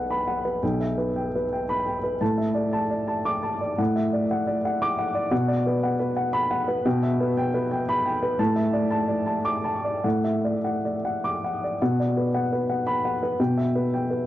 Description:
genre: neoclassical minimalist piano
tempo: 98-121 BPM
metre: 3/4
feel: rubato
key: D major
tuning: A4 = 439 Hz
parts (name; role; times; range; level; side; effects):
- warm upright piano; solo; 0.0-14.3 s; B1 to D6; -22 LUFS; equal; tape echo
room: small room ambience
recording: dry, close 1970s-style studio recording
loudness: -22 LUFS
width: side -14 dB against mid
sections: 0.0-11.8 A section; 11.8-14.3 A section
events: none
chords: 0.0 Bm; 0.6 Em/B; 2.2 Asus4; 3.8 Dadd9/A; 5.3 Bm; 6.8 Em/B; 8.4 Asus4; 10.0 Dadd9/A; 11.8 Bm; 13.4 Em/B

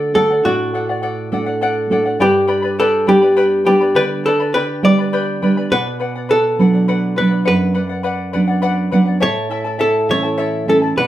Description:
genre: andean folk, Andean ensemble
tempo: 68 BPM (dotted quarters)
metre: 6/8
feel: straight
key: B minor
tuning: A4 = 439 Hz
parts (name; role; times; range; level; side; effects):
- archtop guitar, miked and amplified; melody; 0.0-11.1 s; F#4 to D5; -16 LUFS; equal; none
- charango; accompaniment; 0.0-11.1 s; E4 to B5; -21 LUFS; left 3 dB; none
- nylon-string guitar; accompaniment; 0.0-11.1 s; F#2 to F#4; -18 LUFS; right 2 dB; none
room: wet studio reverb, RT60 0.6 s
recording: heard from further back in the room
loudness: -14 LUFS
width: side -13 dB against mid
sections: 0.0-11.1 A section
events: none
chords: 0.0 D; 2.2 G; 5.7 Bm; 9.2 A

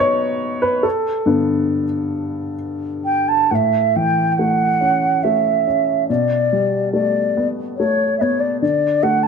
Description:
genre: celtic folk, Celtic slow air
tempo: 69 BPM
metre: 3/4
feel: uneven beats, rubato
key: A mixolydian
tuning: A4 = 441 Hz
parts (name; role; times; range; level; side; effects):
- dark upright piano; accompaniment; 0.0-9.3 s; G2 to D#5; -19 LUFS; left 2 dB; none
- mellow wooden flute; melody; 3.0-9.3 s; C#5 to A5; -17 LUFS; right 2 dB; none
room: light reverb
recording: close, detailed microphones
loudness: -16 LUFS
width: side -6 dB against mid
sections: 0.0-3.5 A section; 3.5-9.3 B section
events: upright piano solo 0.0-3.5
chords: 0.0 B; 0.8 Gadd9; 3.5 A; 6.1 Gadd9/B; 8.6 D

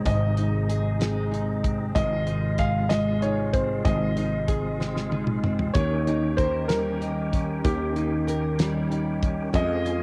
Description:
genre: six-eight pop ballad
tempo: 63 BPM (dotted quarters)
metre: 6/8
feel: straight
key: Ab major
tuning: A4 = 440 Hz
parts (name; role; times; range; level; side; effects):
- nylon-string guitar; accompaniment; 0.0-10.0 s; Ab2 to Bb4; -30 LUFS; equal; double-tracked, cassette tape
- bright tonewheel organ; sustained chords; 0.0-10.0 s; C3 to Ab4; -36 LUFS; equal; chorus vibrato, fast rotary speaker, cassette tape
- electric guitar at the edge of break-up; arpeggios; 0.0-10.0 s; Eb3 to Ab4; -39 LUFS; equal; none
- warm baby grand piano; melody; 0.1-10.0 s; G4 to F5; -32 LUFS; equal; cassette tape, analog delay
- sustaining fretless electric bass; bass; 0.1-10.0 s; Ab1 to F2; -31 LUFS; equal; none
- damped 70s drum kit; drums; 0.1-10.0 s; hi-hat, kick drum, snare drum, toms; -29 LUFS; equal; cassette tape
room: light reverb, small room ambience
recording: home recording on cassette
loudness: -25 LUFS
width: mono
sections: 0.0-10.0 A section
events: drum fill 4.8-5.8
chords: 0.0 Ab; 5.8 Eb7

